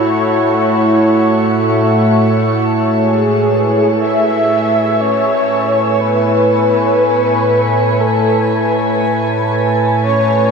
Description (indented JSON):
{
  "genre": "ambient",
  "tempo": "free time",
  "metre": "none",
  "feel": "none",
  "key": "A major",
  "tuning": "A4 = 440 Hz",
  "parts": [
    { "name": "warm analog pad", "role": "sustained chords", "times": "0.0-10.5 s", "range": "A2 to G#5", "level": "-13 LUFS", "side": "right 1 dB", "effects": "chorus" },
    { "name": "pedal harmonium", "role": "drone", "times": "0.0-3.1 s", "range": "A3", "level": "-22 LUFS", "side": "left 1 dB", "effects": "none" },
    { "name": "breathy flute-like synth lead", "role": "melody", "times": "3.0-10.5 s", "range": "G#4 to E5", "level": "-14 LUFS", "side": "equal", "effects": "analog chorus, ping-pong delay" }
  ],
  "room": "wet shimmer reverb, RT60 8.8 s",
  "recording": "dark, warm production",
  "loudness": "-11 LUFS",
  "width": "side -5 dB against mid",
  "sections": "0.0-3.0 A section; 3.0-10.5 B section",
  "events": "none",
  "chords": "0.0 Amaj9"
}